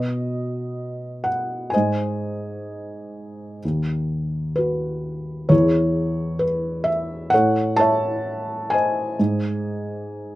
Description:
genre	classical, lyrical solo piano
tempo	64 BPM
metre	4/4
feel	rubato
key	unclear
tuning	A4 = 440 Hz
part	felt-muted upright piano	solo	0.0-10.4 s	D#2 to A5	-20 LUFS	equal	none
room	little or no reverb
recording	close, detailed microphones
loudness	-20 LUFS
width	side -16 dB against mid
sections	0.0-10.4 A section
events	none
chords	0.0 B; 1.7 G#; 3.6 B/D#; 5.5 E; 7.3 A; 9.2 G#

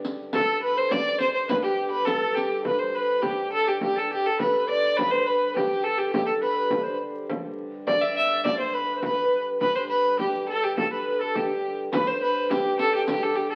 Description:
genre	medieval dance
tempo	104 BPM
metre	2/4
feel	straight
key	G major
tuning	A4 = 440 Hz
part	concert harp	second line	0.0-13.6 s	G4 to E5	-34 LUFS	equal	none
part	pedal harmonium	drone	0.0-13.6 s	G2 to D3	-40 LUFS	equal	none
part	riq	percussion	0.0-2.6, 11.9-13.3 s	none	-36 LUFS	equal	none
part	dark fiddle	melody	0.3-13.6 s	G4 to E5	-27 LUFS	equal	none
part	alto recorder	second line	0.3-13.6 s	G4 to D5	-32 LUFS	equal	none
part	frame drum	percussion	0.3-13.5 s	none	-34 LUFS	equal	none
room	wet studio reverb, RT60 0.8 s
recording	very old 78 rpm record, vinyl crackle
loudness	-25 LUFS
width	mono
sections	0.0-2.7 A section; 2.7-11.9 B section; 11.9-13.6 B section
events	none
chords	none

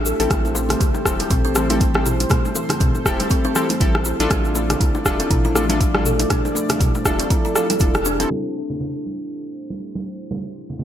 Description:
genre	afro house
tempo	120 BPM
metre	4/4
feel	swing 57% on 16ths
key	A minor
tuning	A4 = 443 Hz
part	warm analog pad	sustained chords	0.0-10.8 s	F3 to E5	-29 LUFS	right 1 dB	chorus, sidechain pumping
part	round analog bass	bass	0.0-8.3 s	E1 to C2	-25 LUFS	equal	sidechain pumping
part	kalimba	arpeggios	0.1-8.3 s	E3 to A4	-25 LUFS	equal	sidechain pumping, ping-pong delay
part	egg shaker	percussion	0.1-8.3 s	none	-30 LUFS	left 2 dB	none
part	warm analog keys	stabs	0.2-8.6 s	C4 to A4	-26 LUFS	left 2 dB	chorus, sidechain pumping, ping-pong delay
part	afro-pop drum kit	drums	0.2-8.4 s	crash cymbal, hi-hat, rim click, toms	-23 LUFS	equal	low-pass filter on snare, low-pass filter on hats, low-pass filter on toms, low-pass filter on cymbals, gated reverb
part	bongos	percussion	0.2-8.3 s	none	-31 LUFS	left 3 dB	none
part	electronic kick drum	drums	0.3-7.9 s	none	-20 LUFS	equal	none
part	congas	percussion	0.3-10.8 s	none	-31 LUFS	right 2 dB	none
room	light reverb, small room ambience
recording	bright 1980s-style digital production, low-pass filter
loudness	-17 LUFS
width	side -10 dB against mid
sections	0.0-8.3 A section; 8.3-10.8 B section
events	band accent 7.9; filter sweep on analog synth pad 8.3-10.8; filter sweep 8.3-10.8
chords	0.0 Am7

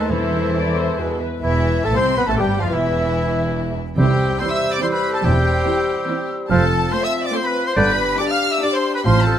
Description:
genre	quick classical-period movement for symphony orchestra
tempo	141 BPM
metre	3/4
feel	straight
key	A minor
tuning	A4 = 439 Hz
part	warm studio violin section	melody	0.0-9.4 s	E5 to F6	-26 LUFS	left 2 dB	none
part	clear clarinet	second line	0.0-9.4 s	E4 to D5	-28 LUFS	left 1 dB	none
part	concert flute	second line	0.0-9.4 s	B4 to G6	-27 LUFS	left 2 dB	none
part	warm chamber violin section	second line	0.0-9.4 s	E4 to F5	-27 LUFS	left 2 dB	none
part	warm oboe	second line	0.0-9.4 s	E4 to F5	-27 LUFS	right 1 dB	none
part	rich chamber viola section	accompaniment	0.0-8.9 s	E3 to D5	-28 LUFS	left 1 dB	none
part	warm bassoon	accompaniment	0.0-9.4 s	B2 to C4	-25 LUFS	right 1 dB	none
part	warm French horn section	sustained chords	0.0-9.4 s	E3 to B#4	-27 LUFS	left 5 dB	none
part	rich chamber double bass section	bass	0.0-9.4 s	E1 to E2	-21 LUFS	right 2 dB	none
part	warm chamber cello section	bass	0.0-9.4 s	E2 to A3	-26 LUFS	right 2 dB	none
part	timpani	percussion	0.1-0.7, 4.0-4.6 s	E2 to C3	-25 LUFS	equal	none
room	light reverb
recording	none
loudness	-16 LUFS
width	side -10 dB against mid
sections	0.0-1.4 A section; 1.4-9.4 B section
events	none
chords	0.1 Am/E; 1.0 E; 1.4 Am/E; 2.7 N.C.; 4.0 C; 5.2 C/E; 6.5 F; 7.8 G

